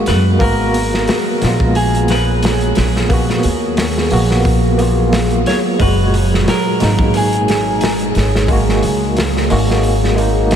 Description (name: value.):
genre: trip hop.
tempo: 89 BPM.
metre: 4/4.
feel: swing 56% on 16ths.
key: G# dorian.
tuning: A4 = 440 Hz.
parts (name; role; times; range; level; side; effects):
overdriven tine electric piano; accompaniment; 0.0-10.6 s; A#2 to F#4; -18 LUFS; right 1 dB; fast tremolo, tape echo.
warbly tape-like pad; sustained chords; 0.0-10.6 s; F#3 to G#4; -20 LUFS; right 2 dB; chorus, built-in reverb.
upright bass; bass; 0.0-10.6 s; F#1 to F#2; -16 LUFS; equal; none.
clean electric guitar; melody; 0.1-8.1 s; G#4 to C#5; -22 LUFS; equal; dub echo.
crunchy breakbeat drum kit; drums; 0.1-10.6 s; hi-hat, kick drum, snare drum; -19 LUFS; equal; none.
room: moderate huge ambient reverb, RT60 7.3 s.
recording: dreamy mix soaked in reverb.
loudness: -12 LUFS.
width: side -9 dB against mid.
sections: 0.0-10.6 A section.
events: filter sweep on tine electric piano 0.0-10.6; kick drops out 9.8-10.6.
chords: 0.4 G#m7; 5.8 F#add9.